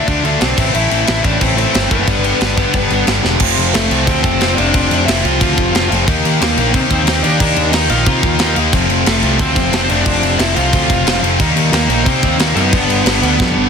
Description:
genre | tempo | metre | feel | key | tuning
punk rock | 180 BPM | 4/4 | straight | unclear | A4 = 441 Hz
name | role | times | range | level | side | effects
dark smooth lead guitar | melody | 0.0-13.7 s | A3 to F5 | -18 LUFS | equal | overdrive
distorted electric guitar | riff | 0.0-13.7 s | F2 to Eb4 | -18 LUFS | left 18 dB | overdrive
distorted electric guitar | riff | 0.0-13.7 s | G2 to G4 | -19 LUFS | right 18 dB | overdrive
growling picked electric bass | bass | 0.1-13.7 s | E1 to C3 | -18 LUFS | equal | overdrive
tight metal drum kit | drums | 0.1-13.5 s | crash cymbal, kick drum, snare drum | -17 LUFS | equal | soft clipping on kick
room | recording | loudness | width
little or no reverb | dense, heavily limited modern master | -11 LUFS | side -6 dB against mid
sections
0.0-3.4 A section; 3.4-13.7 B section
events
drum fill 3.2, 13.4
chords
0.0 Dm; 0.6 Am; 2.1 G; 3.4 F; 6.1 Eb; 8.7 F; 11.4 Eb; 12.7 G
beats
0.08 0.41 | 0.74 1.08 1.41 1.74 | 2.08 2.41 2.74 3.08 | 3.41 3.74 4.08 4.41 | 4.74 5.07 5.41 5.74 | 6.07 6.41 6.74 7.07 | 7.40 7.74 8.07 8.40 | 8.73 9.07 9.40 9.73 | 10.06 10.40 10.73 11.06 | 11.40 11.73 12.06 12.39 | 12.73 13.06 13.39

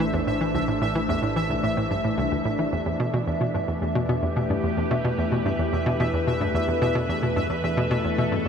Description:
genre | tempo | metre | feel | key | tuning
ambient, sequencer-driven space music | 110 BPM | 4/4 | straight | unclear | A4 = 440 Hz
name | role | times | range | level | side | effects
evolving wavetable pad | sustained chords | 0.0-8.5 s | E3 to C5 | -26 LUFS | left 1 dB | chorus, built-in reverb, shimmer reverb
hollow square pluck | riff | 0.0-8.5 s | C2 to E3 | -25 LUFS | equal | chorus, ping-pong delay, shimmer reverb
analog drone | bass | 0.0-8.5 s | A1 to E2 | -33 LUFS | equal | chorus
pulsing gated texture | texture | 0.0-8.5 s | E5 | -30 LUFS | right 1 dB | chorus, built-in reverb, shimmer reverb
room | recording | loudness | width
wet huge ambient reverb, RT60 8.2 s | none | -22 LUFS | side -7 dB against mid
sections
0.0-8.5 A section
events
none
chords
0.0 Am; 2.7 Em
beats
0.00 | 0.55 1.09 1.64 2.18 | 2.73 3.27 3.82 4.37 | 4.91 5.46 6.00 6.55 | 7.09 7.64 8.18

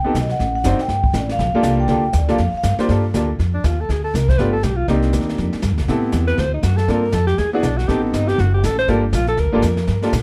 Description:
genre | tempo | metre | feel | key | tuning
jazz, small-group swing and bop | 240 BPM | 4/4 | swing 60% on 8ths | G minor | A4 = 440 Hz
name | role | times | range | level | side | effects
vibraphone with medium mallets | melody | 0.0-2.6 s | D5 to G5 | -25 LUFS | equal | plate reverb
clear concert grand piano | accompaniment | 0.0-10.1 s | A3 to C5 | -22 LUFS | equal | none
upright bass | bass | 0.0-10.2 s | F#1 to Bb2 | -22 LUFS | equal | none
jazz brush drum kit | drums | 0.1-10.2 s | brushed snare drum, hi-hat, kick drum, snare drum | -28 LUFS | equal | none
warm alto saxophone | second line | 3.5-10.1 s | B3 to C5 | -24 LUFS | equal | none
room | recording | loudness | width
light reverb | dark, warm production | -18 LUFS | mono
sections
0.0-2.9 A section; 2.9-10.2 A section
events
vibraphone solo 0.0-2.9; alto saxophone solo 2.9-10.2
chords
0.4 D7b9; 0.9 Gm7; 3.9 Bbmaj9; 4.4 G7; 4.9 Cm7; 5.9 Am7; 6.4 D; 6.9 Gm11; 7.4 E7; 7.9 Am7b5; 8.4 F#m; 8.9 Gm7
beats
0.14 0.39 0.64 | 0.89 1.14 1.39 1.64 | 1.89 2.13 2.38 2.63 | 2.88 3.13 3.38 3.63 | 3.88 4.13 4.38 4.63 | 4.88 5.13 5.38 5.63 | 5.88 6.13 6.38 6.63 | 6.88 7.13 7.38 7.63 | 7.88 8.13 8.38 8.63 | 8.88 9.13 9.38 9.63 | 9.88 10.13

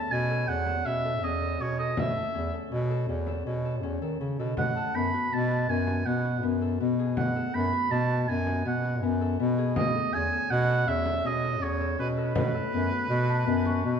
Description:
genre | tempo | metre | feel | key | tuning
contemporary instrumental, chamber music in an uneven meter | 162 BPM | 7/4 | straight | unclear | A4 = 441 Hz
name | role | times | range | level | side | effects
warm oboe | melody | 0.0-14.0 s | B4 to B5 | -30 LUFS | right 4 dB | none
Celtic harp | arpeggios | 0.0-14.0 s | A3 to A4 | -31 LUFS | left 6 dB | none
warm bass clarinet | bass | 0.1-14.0 s | E2 to D#3 | -29 LUFS | right 1 dB | none
frame drum | percussion | 0.7-13.9 s | none | -36 LUFS | left 1 dB | none
large celesta | texture | 4.8-14.0 s | G#5 to C#6 | -39 LUFS | left 8 dB | none
room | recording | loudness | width
wet recital hall reverb, RT60 1.7 s | nothing above 10.6 kHz | -25 LUFS | side -7 dB against mid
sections
0.0-14.0 A section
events
none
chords
0.0 A; 4.6 B5; 9.8 A; 12.4 B5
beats
0.11 0.48 0.85 1.23 1.60 | 1.97 2.34 2.71 3.09 3.46 3.83 4.20 | 4.57 4.95 5.32 5.69 6.06 6.43 6.80 | 7.17 7.54 7.92 8.29 8.66 9.03 9.40 | 9.77 10.14 10.51 10.88 11.25 11.62 11.99 | 12.36 12.73 13.10 13.47 13.84

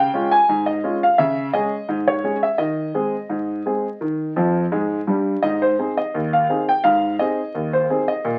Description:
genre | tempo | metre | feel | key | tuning
ragtime piano | 85 BPM | 2/4 | swing 54% on 16ths | Ab major | A4 = 439 Hz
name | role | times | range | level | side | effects
clear concert grand piano | solo | 0.0-8.4 s | Eb2 to Ab5 | -20 LUFS | equal | none
room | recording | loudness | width
moderate studio reverb, RT60 0.6 s | very old 78 rpm record, vinyl crackle | -20 LUFS | mono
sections
0.0-8.4 A section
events
grand piano fill 4.4-5.4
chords
0.0 Db; 1.2 Db5; 2.6 Ab/Eb; 4.0 Eb; 5.4 Ab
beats
0.48 | 1.18 1.89 | 2.60 3.31 | 4.01 4.72 | 5.43 6.14 | 6.84 7.55 | 8.25

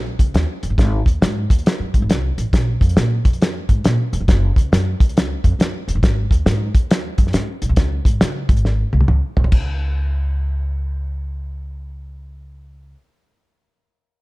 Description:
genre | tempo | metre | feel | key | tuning
uptempo 1960s-style soul | 137 BPM | 4/4 | swing 65% on 8ths | Db major | A4 = 440 Hz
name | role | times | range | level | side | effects
upright bass | bass | 0.0-12.9 s | Fb1 to Db3 | -20 LUFS | equal | none
cloth-damped thuddy drum kit | drums | 0.2-9.7 s | crash cymbal, hi-hat, kick drum, snare drum, toms | -17 LUFS | equal | none
room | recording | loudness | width
little or no reverb | dark, warm production | -15 LUFS | side -21 dB against mid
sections
0.0-9.5 A section; 9.5-13.0 B section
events
drum fill 8.7-9.5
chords
none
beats
0.34 | 0.78 1.22 1.66 2.09 | 2.53 2.97 3.41 3.84 | 4.28 4.72 5.16 5.59 | 6.03 6.47 6.90 7.34 | 7.78 8.21 8.65 9.09 | 9.53 9.96 10.40 10.84 | 11.28 11.71 12.15 12.59

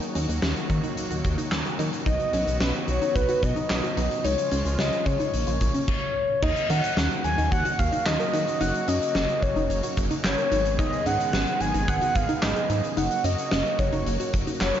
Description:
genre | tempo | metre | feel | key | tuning
synth-pop | 110 BPM | 4/4 | straight | Eb minor | A4 = 440 Hz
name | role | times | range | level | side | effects
brassy analog pad | sustained chords | 0.0-14.8 s | Db3 to Ab4 | -33 LUFS | right 1 dB | chorus
wide unison pluck | arpeggios | 0.0-14.8 s | Db4 to Bb4 | -33 LUFS | left 1 dB | analog delay
huge arena drum kit | drums | 0.0-14.8 s | crash cymbal, handclaps, hi-hat, kick drum, snare drum | -27 LUFS | equal | none
chorused synth bass | bass | 0.2-14.7 s | Gb1 to Eb3 | -27 LUFS | equal | none
mellow horn-like synth lead | melody | 2.1-14.8 s | B4 to Ab5 | -26 LUFS | equal | chorus, slapback echo, analog delay
room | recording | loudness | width
moderate lush hall reverb, RT60 1.9 s, small room ambience | big arena sound, nothing above 7.5 kHz, faint mains hum | -22 LUFS | side -10 dB against mid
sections
0.0-6.4 A section; 6.4-14.8 B section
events
none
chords
0.0 Ebm; 2.1 B; 4.2 Db; 5.3 Bbm; 6.4 Ebm; 8.6 Gb; 10.5 Abm; 13.0 Gb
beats
0.43 0.97 1.52 | 2.06 2.61 3.15 3.70 | 4.24 4.79 5.33 5.88 | 6.43 6.97 7.52 8.06 | 8.61 9.15 9.70 10.24 | 10.79 11.34 11.88 12.43 | 12.97 13.52 14.06 14.61

